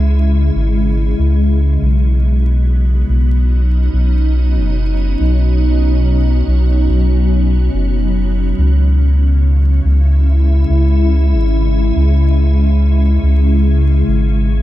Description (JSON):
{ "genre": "ambient dub", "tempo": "71 BPM", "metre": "4/4", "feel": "straight", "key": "C# minor", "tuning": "A4 = 441 Hz", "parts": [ { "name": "soft additive organ-like pad", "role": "sustained chords", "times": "0.0-14.6 s", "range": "B2 to E4", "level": "-18 LUFS", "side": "left 1 dB", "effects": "ensemble chorus, built-in reverb" }, { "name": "soft dub sub bass", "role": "bass", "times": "0.0-14.6 s", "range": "F#1 to C#2", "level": "-12 LUFS", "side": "equal", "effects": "none" } ], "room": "little or no reverb", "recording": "vinyl crackle", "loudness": "-11 LUFS", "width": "side -14 dB against mid", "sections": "0.0-8.6 A section; 8.6-14.6 B section", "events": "none", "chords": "0.0 C#m; 1.8 B; 8.6 C#m" }